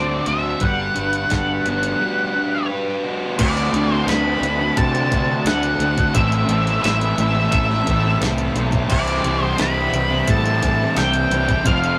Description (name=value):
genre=rock, shoegaze and dream pop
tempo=87 BPM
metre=4/4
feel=straight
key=D mixolydian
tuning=A4 = 438 Hz
part: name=octave-fuzz lead guitar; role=melody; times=0.0-12.0 s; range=D5 to B5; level=-24 LUFS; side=equal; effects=distortion
part: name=soft additive organ-like pad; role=sustained chords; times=0.0-12.0 s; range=D3 to D6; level=-35 LUFS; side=equal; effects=none
part: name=twelve-string electric guitar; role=arpeggios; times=0.0-12.0 s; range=A4 to C5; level=-36 LUFS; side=equal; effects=none
part: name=overdriven semi-hollow guitar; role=riff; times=0.0-12.0 s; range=A2 to C5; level=-29 LUFS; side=equal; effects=none
part: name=thick fuzz guitar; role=riff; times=0.0-12.0 s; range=F2 to C5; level=-26 LUFS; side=equal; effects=distortion
part: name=fuzz fingered electric bass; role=bass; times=0.0-11.9 s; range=F1 to C3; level=-26 LUFS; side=equal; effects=overdrive
part: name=crisp 8-bit digital drum machine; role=drums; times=0.3-12.0 s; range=crash cymbal, hi-hat, kick drum, snare drum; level=-25 LUFS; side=equal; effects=none
part: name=raw garage guitar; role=riff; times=3.4-12.0 s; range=A2 to F#4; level=-28 LUFS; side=equal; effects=overdrive
room=wet small room reverb, RT60 0.5 s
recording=rough rehearsal-room recording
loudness=-19 LUFS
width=mono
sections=0.0-3.4 A section; 3.4-12.0 B section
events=none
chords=0.0 D7; 0.6 Gmaj7; 3.4 D7; 6.1 Amadd9; 8.9 Cadd9